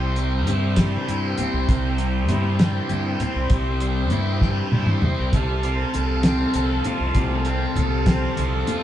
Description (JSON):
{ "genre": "psychedelic rock", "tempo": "66 BPM (dotted quarters)", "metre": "6/8", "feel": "straight", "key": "C major", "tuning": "A4 = 437 Hz", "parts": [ { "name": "combo organ", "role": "sustained chords", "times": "0.0-8.8 s", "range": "G4 to A5", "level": "-31 LUFS", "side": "right 4 dB", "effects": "none" }, { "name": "fuzz guitar", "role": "riff", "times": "0.0-8.8 s", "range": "C3 to A4", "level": "-25 LUFS", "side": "left 1 dB", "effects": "distortion, phaser" }, { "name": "fuzz fingered electric bass", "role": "bass", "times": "0.0-8.6 s", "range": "C2 to G2", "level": "-24 LUFS", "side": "equal", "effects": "overdrive" }, { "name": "pedal harmonium", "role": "drone", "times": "0.0-8.8 s", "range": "C2 to C3", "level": "-34 LUFS", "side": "equal", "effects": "none" }, { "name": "cloth-damped thuddy drum kit", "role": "drums", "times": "0.2-8.8 s", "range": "hi-hat, kick drum, snare drum, toms", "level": "-22 LUFS", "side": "equal", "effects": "vintage 12-bit sampler grit" }, { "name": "congas", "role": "percussion", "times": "0.3-8.8 s", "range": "none", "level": "-31 LUFS", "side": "left 1 dB", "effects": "none" } ], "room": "moderate stone room reverb, RT60 1.0 s", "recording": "band playing live in one room, cassette tape", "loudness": "-19 LUFS", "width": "side -12 dB against mid", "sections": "0.0-8.8 A section", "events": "drum fill 4.4-5.3", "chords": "0.0 C; 5.3 F/C" }